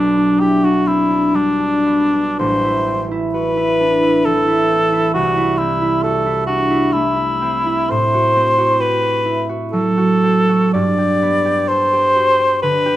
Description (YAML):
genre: classical, romantic duo for cor anglais and harp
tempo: 65 BPM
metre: 3/4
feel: uneven beats, rubato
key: unclear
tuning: A4 = 441 Hz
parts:
  - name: mellow cor anglais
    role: melody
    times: 0.0-13.0 s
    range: D4 to D5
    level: -16 LUFS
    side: equal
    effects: none
  - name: concert harp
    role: accompaniment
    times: 0.0-13.0 s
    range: A1 to A4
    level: -17 LUFS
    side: right 1 dB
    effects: none
room: moderate large studio reverb, RT60 1.2 s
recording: none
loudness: -13 LUFS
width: side -14 dB against mid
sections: 0.0-13.0 A section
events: none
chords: 0.0 G/B; 2.4 Am; 5.1 Am/C; 7.9 F#dim/A; 10.7 G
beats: 0.40 1.34 | 2.38 3.33 4.25 | 5.14 6.04 6.92 | 7.91 8.80 9.73 | 10.74 11.68 12.62